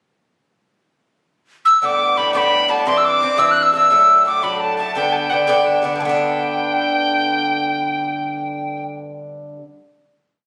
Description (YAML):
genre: celtic folk, Celtic jig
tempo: 115 BPM (dotted quarters)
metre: 6/8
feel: straight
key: G major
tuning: A4 = 440 Hz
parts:
  - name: tin whistle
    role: melody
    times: 1.7-8.8 s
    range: F#5 to F#6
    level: -18 LUFS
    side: equal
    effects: slapback echo
  - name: Irish bouzouki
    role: accompaniment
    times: 1.8-9.6 s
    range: G2 to D4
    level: -22 LUFS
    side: equal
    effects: none
room: moderate studio reverb, RT60 0.6 s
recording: recorded on a phone in the room, studio reverb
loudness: -17 LUFS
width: mono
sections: 0.8-1.8 pickup bar; 1.8-6.0 A section; 6.0-8.1 final chord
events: none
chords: 0.8 N.C.; 1.8 Gadd9; 2.9 Cadd9; 3.9 D; 5.0 G